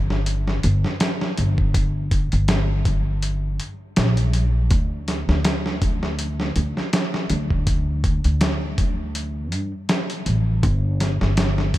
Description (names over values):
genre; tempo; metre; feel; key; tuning
trip hop; 81 BPM; 4/4; swing 56% on 16ths; G minor; A4 = 441 Hz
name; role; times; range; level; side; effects
upright bass; bass; 0.0-11.8 s; G1 to G2; -21 LUFS; equal; none
dusty soul sampler-style drum kit; drums; 0.1-11.8 s; hi-hat, kick drum, snare drum; -22 LUFS; equal; overdrive
room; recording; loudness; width
moderate church reverb, RT60 3.2 s; dreamy mix soaked in reverb; -19 LUFS; side -15 dB against mid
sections
0.0-11.8 A section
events
none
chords
none